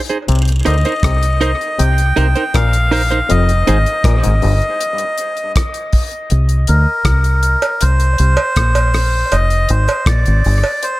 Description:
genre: dub reggae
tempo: 80 BPM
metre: 4/4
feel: straight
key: unclear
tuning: A4 = 441 Hz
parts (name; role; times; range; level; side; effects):
- clean electric guitar; accompaniment; 0.1-3.8 s; Eb4 to C5; -22 LUFS; right 4 dB; dub echo
- damped 70s drum kit; drums; 0.1-11.0 s; hi-hat, kick drum, rim click; -19 LUFS; equal; none
- muted clav; riff; 0.3-4.5 s; F2 to D3; -25 LUFS; left 6 dB; overdrive, auto-wah, dub echo
- deep dub fingered electric bass; bass; 0.3-10.6 s; F1 to D2; -13 LUFS; equal; none
- jawbone-type rattle and cowbell; percussion; 0.3-0.5, 7.6-10.8 s; none; -23 LUFS; right 4 dB; dub echo
- melodica; melody; 0.7-11.0 s; Bb4 to G5; -18 LUFS; equal; dub echo
room: light reverb, small room ambience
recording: none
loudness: -12 LUFS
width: side -18 dB against mid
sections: 0.0-11.0 A section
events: break 0.0; part muted 0.3-6.3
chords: 0.3 Cm7; 3.3 Fm7; 6.3 Bbsus2; 9.3 Fm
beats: | 0.28 1.03 1.79 2.54 | 3.29 4.04 4.80 5.55 | 6.30 7.06 7.81 8.56 | 9.32 10.07 10.82

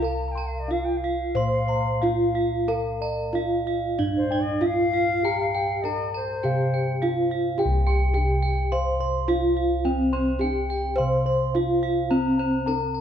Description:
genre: Javanese gamelan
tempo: 90-106 BPM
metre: 4/4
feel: straight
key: C slendro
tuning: A4 = 440 Hz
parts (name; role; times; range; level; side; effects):
- gamelan-type bronze metallophone; melody; 0.0-13.0 s; C4 to C5; -24 LUFS; right 1 dB; none
- bansuri; second line; 0.0-7.1 s; C5 to Bb5-38c; -30 LUFS; left 4 dB; none
- gamelan-type bossed gongs; arpeggios; 0.0-13.0 s; C5 to C6; -32 LUFS; left 5 dB; none
- gamelan-type bronze metallophone; arpeggios; 0.0-13.0 s; C5 to C6; -32 LUFS; right 5 dB; none
- gamelan-type bossed gongs; bass; 0.0-13.0 s; C2 to Bb4-40c; -27 LUFS; equal; none
room: wet large studio reverb, RT60 1.4 s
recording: band playing live in one room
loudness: -21 LUFS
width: side -9 dB against mid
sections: 0.0-7.6 A section; 7.6-13.0 B section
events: none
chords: none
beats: | 0.02 0.69 1.35 2.02 | 2.69 3.35 3.99 4.62 | 5.24 5.85 6.44 7.02 | 7.59 8.16 8.72 9.29 | 9.85 10.42 10.98 11.55 | 12.11 12.68

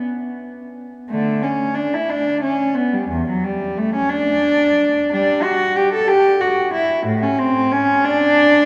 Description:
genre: classical, baroque-style suite movement for unaccompanied cello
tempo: 60 BPM (dotted quarters)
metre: 6/8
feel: rubato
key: D major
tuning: A4 = 440 Hz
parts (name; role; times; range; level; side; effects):
- warm cello; solo; 0.0-8.7 s; E2 to A4; -18 LUFS; equal; none
room: wet cathedral reverb, RT60 4.3 s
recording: none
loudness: -18 LUFS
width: mono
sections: 0.0-1.1 A section; 1.1-8.7 A section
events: none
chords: none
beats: 0.04 | 1.10 2.10 | 3.12 4.13 | 5.13 6.11 | 7.08 8.07

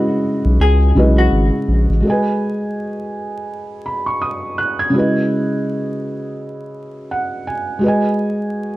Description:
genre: lo-fi hip hop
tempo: 83 BPM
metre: 4/4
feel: swing 58% on 16ths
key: C# minor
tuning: A4 = 439 Hz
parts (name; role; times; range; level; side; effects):
- vintage hollow-body jazz guitar; melody; 0.0-1.5 s; F#4 to G#4; -22 LUFS; left 2 dB; low-pass filter, tape echo
- felt-muted upright piano; accompaniment; 0.0-8.8 s; C#3 to G#6; -18 LUFS; right 1 dB; low-pass filter, plate reverb
- saturated sub bass; bass; 0.5-2.0 s; G#1 to C#2; -13 LUFS; equal; none
room: moderate studio reverb, RT60 0.6 s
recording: vinyl crackle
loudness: -15 LUFS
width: side -17 dB against mid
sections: 0.0-2.0 A section; 2.0-8.8 B section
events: felt piano fill 6.7-7.8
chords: 0.0 C#m11; 2.0 G#m7; 4.9 C#m11; 7.8 G#m7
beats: 0.59 1.32 | 2.04 2.76 3.49 4.21 | 4.93 5.66 6.38 7.10 | 7.82 8.55

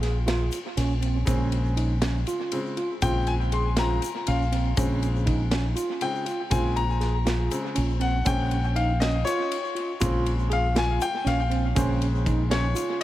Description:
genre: progressive instrumental, band music in an uneven meter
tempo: 240 BPM (eighths)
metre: 7/8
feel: straight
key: Bb dorian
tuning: A4 = 442 Hz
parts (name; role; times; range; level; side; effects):
- bright concert grand piano; accompaniment; 0.0-13.0 s; Db3 to C6; -29 LUFS; left 4 dB; dub echo
- tine electric piano; arpeggios; 0.0-13.0 s; C4 to Ab4; -30 LUFS; right 4 dB; medium tremolo, dub echo
- fingered electric bass; bass; 0.0-12.7 s; Bb1; -25 LUFS; equal; none
- modern studio drum kit; drums; 0.0-13.0 s; kick drum, ride cymbal, snare drum; -30 LUFS; equal; dub echo
- tube shaker; percussion; 0.3-13.0 s; none; -44 LUFS; left 5 dB; dub echo
room: light reverb, studio ambience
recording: echo-heavy mix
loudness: -22 LUFS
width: side -14 dB against mid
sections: 0.0-13.0 A section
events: grand piano solo 0.0-13.0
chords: 0.0 Bbm7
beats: 0.02 0.27 0.52 0.77 1.02 | 1.27 1.52 1.77 2.02 2.27 2.52 2.77 | 3.02 3.27 3.52 3.77 4.02 4.27 4.52 | 4.77 5.02 5.27 5.52 5.77 6.02 6.27 | 6.52 6.77 7.02 7.27 7.52 7.77 8.02 | 8.27 8.52 8.77 9.02 9.27 9.52 9.77 | 10.02 10.27 10.52 10.77 11.02 11.27 11.52 | 11.77 12.02 12.27 12.52 12.77 13.02

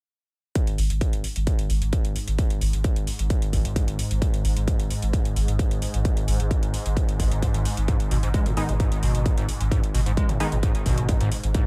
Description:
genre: driving peak-time techno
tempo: 131 BPM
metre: 4/4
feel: straight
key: G# minor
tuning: A4 = 439 Hz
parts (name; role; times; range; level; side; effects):
- swarming drone; drone; 1.7-11.7 s; G#2; -34 LUFS; equal; built-in reverb, sidechain pumping
- electronic hi-hat; drums; 0.6-11.6 s; none; -38 LUFS; equal; none
- electronic kick drum; drums; 0.6-11.6 s; none; -26 LUFS; equal; distortion
- saturated sub bass; bass; 0.7-11.5 s; G#1; -28 LUFS; equal; tube saturation, sidechain pumping, low-pass filter
- overdriven acid bass; riff; 7.9-11.6 s; G#2 to G#3; -30 LUFS; equal; lush chorus, sidechain pumping, tape echo
- sync-sweep polysynth; stabs; 8.6-10.5 s; G#3 to D#4; -35 LUFS; equal; chorus, sidechain pumping, tape echo
room: digital ambience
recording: none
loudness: -24 LUFS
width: mono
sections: 0.6-11.7 A section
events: none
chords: none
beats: | 0.56 1.01 1.47 1.93 | 2.39 2.85 3.30 3.76 | 4.22 4.68 5.13 5.59 | 6.05 6.51 6.97 7.42 | 7.88 8.34 8.80 9.26 | 9.71 10.17 10.63 11.09 | 11.55

